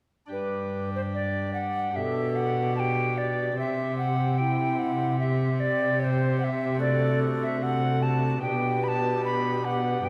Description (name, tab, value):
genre	classical, baroque-style sonata movement with continuo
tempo	74 BPM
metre	4/4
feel	rubato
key	G major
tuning	A4 = 440 Hz
part	mellow alto recorder	melody	0.3-10.1 s	B4 to B5	-31 LUFS	equal	none
part	pipe organ, cornet	accompaniment	0.3-10.1 s	G2 to G4	-34 LUFS	equal	none
part	rich cello	bass	0.3-10.1 s	G2 to C3	-31 LUFS	equal	none
part	mellow hollow concert flute	second line	2.0-10.1 s	E4 to B4	-35 LUFS	equal	none
room	wet recital hall reverb, RT60 1.5 s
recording	none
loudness	-26 LUFS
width	mono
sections	0.3-10.1 A section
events	none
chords	0.3 G5; 2.0 G/B; 3.6 C; 6.8 D7/C; 8.4 G/B